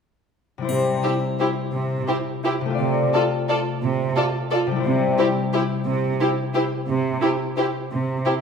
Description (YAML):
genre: classical, orchestral ballroom waltz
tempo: 175 BPM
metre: 3/4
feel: uneven beats, rubato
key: C major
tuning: A4 = 442 Hz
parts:
  - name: concert harp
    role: arpeggios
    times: 0.6-8.4 s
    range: C3 to D5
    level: -24 LUFS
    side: left 5 dB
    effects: none
  - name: warm studio cello section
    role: bass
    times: 0.7-8.2 s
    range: C3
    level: -25 LUFS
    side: right 4 dB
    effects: none
  - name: triangle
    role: percussion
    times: 0.7-1.4 s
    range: none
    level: -41 LUFS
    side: equal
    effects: none
  - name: dark studio violin section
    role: melody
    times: 1.0-8.3 s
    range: C5 to D5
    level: -29 LUFS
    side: left 3 dB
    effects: none
  - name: rich studio violin section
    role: second line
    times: 1.0-8.3 s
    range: G4 to A4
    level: -28 LUFS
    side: left 1 dB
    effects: none
  - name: rich studio viola section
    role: accompaniment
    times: 1.0-8.3 s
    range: E4 to F4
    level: -26 LUFS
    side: right 2 dB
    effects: none
room: wet recital hall reverb, RT60 1.5 s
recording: minimal, uncompressed stereo recording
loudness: -20 LUFS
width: side -6 dB against mid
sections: 0.7-8.4 A section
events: none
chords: 0.7 C; 2.8 Dm7/C; 4.8 C